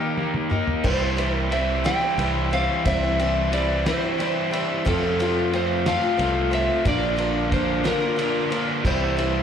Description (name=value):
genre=folk rock and heartland rock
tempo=60 BPM (dotted quarters)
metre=6/8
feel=straight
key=C mixolydian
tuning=A4 = 442 Hz
part: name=electric slide guitar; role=melody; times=0.0-9.4 s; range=A4 to G5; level=-26 LUFS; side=right 1 dB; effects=slapback echo, tape echo
part: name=picked swing-style acoustic guitar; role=accompaniment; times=0.0-9.4 s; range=Bb2 to C5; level=-27 LUFS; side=left 6 dB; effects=slapback echo
part: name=bright tonewheel organ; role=sustained chords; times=0.0-9.4 s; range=E3 to Eb5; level=-36 LUFS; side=right 2 dB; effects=none
part: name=crunchy overdriven guitar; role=riff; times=0.0-9.4 s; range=F2 to G4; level=-26 LUFS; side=right 1 dB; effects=slapback echo
part: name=cloth-damped thuddy drum kit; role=drums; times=0.2-9.3 s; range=crash cymbal, kick drum, ride cymbal, snare drum, toms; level=-29 LUFS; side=equal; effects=none
part: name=fingered electric bass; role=bass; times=0.8-9.4 s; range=Bb1 to F2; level=-26 LUFS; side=right 1 dB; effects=none
room=light reverb, small room ambience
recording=live gig heard through the venue's PA, club ambience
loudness=-20 LUFS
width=side -8 dB against mid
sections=0.8-9.4 A section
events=break 0.0-0.8; drum fill 0.0-0.8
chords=0.0 Eb; 0.8 C; 4.9 F; 6.9 Bb; 8.8 C